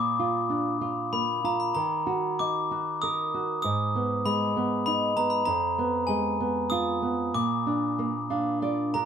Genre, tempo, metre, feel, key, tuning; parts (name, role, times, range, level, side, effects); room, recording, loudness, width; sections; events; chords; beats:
children's music, lullaby; 95 BPM; 3/4; rubato; A4 = 440 Hz
glockenspiel with brass mallets; melody; 0.0-9.1 s; Ab5 to Eb6; -27 LUFS; left 3 dB
nylon-string guitar; accompaniment; 0.0-9.1 s; F2 to F5; -28 LUFS; right 3 dB
moderate studio ambience, RT60 0.5 s; band playing live in one room; -24 LUFS; side -8 dB against mid
0.0-9.1 A section
nylon-string guitar fill 8.0-9.1
0.0 Bb; 1.7 Ebm; 3.6 Abm; 5.5 Fdim; 7.3 Bb
0.49 1.12 | 1.75 2.39 3.02 | 3.64 4.25 4.86 | 5.47 6.08 6.71 | 7.34 7.98 8.62